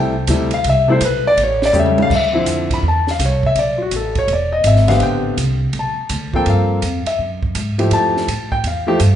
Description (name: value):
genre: jazz piano trio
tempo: 165 BPM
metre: 4/4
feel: swing 65% on 8ths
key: A minor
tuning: A4 = 438 Hz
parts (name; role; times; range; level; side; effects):
- warm concert grand piano; melody; 0.0-9.2 s; C3 to B5; -16 LUFS; left 2 dB; none
- upright bass; bass; 0.0-9.2 s; E1 to A2; -18 LUFS; right 1 dB; none
- compact cocktail drum kit; drums; 0.3-9.1 s; crash cymbal, hi-hat, kick drum, ride cymbal, snare drum, toms; -24 LUFS; right 3 dB; none
room: moderate large studio reverb, RT60 1.5 s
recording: band playing live in one room, nothing above 10.6 kHz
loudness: -14 LUFS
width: side -10 dB against mid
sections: 0.0-2.1 A section; 2.1-9.2 A section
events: grand piano solo 0.0-9.2; drum fill 1.7-2.1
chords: 0.0 Am7; 1.4 A7; 2.1 Dm9; 3.5 Asus2; 4.3 E7; 5.0 Am11; 6.5 Gm11; 7.2 F#sus2; 7.9 Fmaj9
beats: 0.28 | 0.64 1.01 1.37 1.73 | 2.10 2.46 2.82 3.19 | 3.55 3.91 4.28 4.64 | 5.00 5.37 5.73 6.09 | 6.46 6.82 7.18 7.55 | 7.91 8.27 8.63 9.00